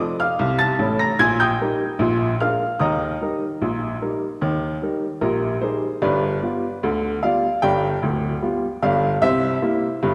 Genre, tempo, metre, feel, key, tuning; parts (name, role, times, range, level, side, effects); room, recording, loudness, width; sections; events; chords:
ragtime piano; 75 BPM; 2/4; straight; A4 = 438 Hz
warm upright piano; solo; 0.0-10.1 s; D1 to Bb6; -21 LUFS; equal
wet concert hall reverb, RT60 2.1 s; recorded in a church or concert hall; -21 LUFS; mono
0.0-6.0 A section; 6.0-10.1 B section
0.0 F7; 1.2 Eb/Bb; 2.0 Bb7; 2.8 Eb; 6.0 G7; 9.2 C7